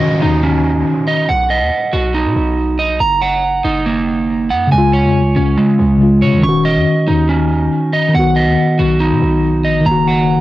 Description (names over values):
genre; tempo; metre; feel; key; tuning
hip hop; 140 BPM; 4/4; half-time; Eb minor; A4 = 440 Hz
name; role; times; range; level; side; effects
mellow tine electric piano; accompaniment; 0.0-1.3, 4.7-10.4 s; Db3 to Gb4; -13 LUFS; left 2 dB; medium stereo tremolo
electric guitar at the edge of break-up; arpeggios; 0.0-10.4 s; Ab3 to Db6; -15 LUFS; right 3 dB; tape echo
downlifter; sound effects; 0.0-3.0 s; none; -26 LUFS; equal; none
hard-hitting 808-style bass; bass; 0.2-10.4 s; Eb1 to Db3; -19 LUFS; equal; none
room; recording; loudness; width
moderate booth ambience, RT60 0.2 s; home recording on cassette; -11 LUFS; side -15 dB against mid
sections
0.0-10.4 A section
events
none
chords
0.0 Ebm7; 1.3 B; 3.0 Gb6; 4.7 Db; 6.4 Ebm7; 8.1 B; 9.9 Gb6